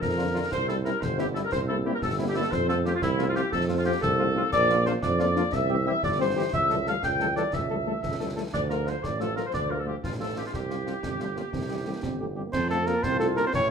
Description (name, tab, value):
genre	military-style march for wind band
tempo	120 BPM (dotted quarters)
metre	6/8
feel	straight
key	F major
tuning	A4 = 440 Hz
part	mellow woodwind section	second line	0.0-13.7 s	E4 to A5	-28 LUFS	left 1 dB	none
part	warm tuba	bass	0.0-13.7 s	G1 to F2	-29 LUFS	right 3 dB	none
part	concert snare drum, concert bass drum and clash cymbals	drums	0.0-13.7 s	none	-35 LUFS	left 2 dB	none
part	warm cornet	melody	0.2-13.7 s	E4 to Db5	-33 LUFS	right 1 dB	none
part	mellow French horn section	accompaniment	0.2-13.4 s	D3 to A4	-34 LUFS	left 5 dB	none
part	warm euphonium	second line	11.0-13.6 s	G3 to Db4	-33 LUFS	right 4 dB	none
part	bright trombone section	sustained chords	13.0-13.7 s	E4 to F4	-34 LUFS	right 1 dB	none
room	wet large studio reverb, RT60 0.9 s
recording	minimal, uncompressed stereo recording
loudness	-24 LUFS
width	side -6 dB against mid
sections	0.0-12.5 A section; 12.5-13.7 A section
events	none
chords	0.0 Bb; 0.5 C; 1.5 C7; 2.5 F; 4.5 Bb; 5.5 C; 6.5 A7/C#; 8.5 Dm; 10.5 Csus4; 11.5 C; 12.5 F